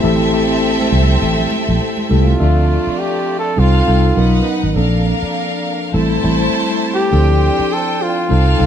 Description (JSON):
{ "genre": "lush 1970s-style soul", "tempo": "102 BPM", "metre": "4/4", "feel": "swing 58% on 16ths", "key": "D minor", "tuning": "A4 = 440 Hz", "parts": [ { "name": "warm symphonic violin section", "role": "second line", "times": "0.0-8.7 s", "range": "A3 to A5", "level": "-20 LUFS", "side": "equal", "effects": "none" }, { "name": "mellow tine electric piano", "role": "accompaniment", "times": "0.0-8.7 s", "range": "F3 to E5", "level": "-19 LUFS", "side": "left 2 dB", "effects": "medium stereo tremolo" }, { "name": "vintage muted fingered electric bass", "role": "bass", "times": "0.0-8.7 s", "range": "G#1 to D2", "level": "-14 LUFS", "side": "equal", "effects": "none" }, { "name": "congas", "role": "percussion", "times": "0.0-2.3 s", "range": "none", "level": "-25 LUFS", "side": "right 3 dB", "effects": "none" }, { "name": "warm flugelhorn", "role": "melody", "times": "2.2-8.7 s", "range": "F4 to A4", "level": "-18 LUFS", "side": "right 1 dB", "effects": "tube saturation" } ], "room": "light reverb", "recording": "band playing live in one room", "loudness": "-12 LUFS", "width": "side -9 dB against mid", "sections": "0.0-2.4 A section; 2.4-8.7 B section", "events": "none", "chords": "0.0 Am7; 2.4 Dm7; 3.6 F7/C; 4.2 Bmaj7; 4.8 Bbmaj7; 5.9 Am7; 7.1 Dm7", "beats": "| 0.03 0.62 1.22 1.80 | 2.40 2.99 3.58 4.17 | 4.76 5.35 5.94 6.53 | 7.12 7.71 8.29" }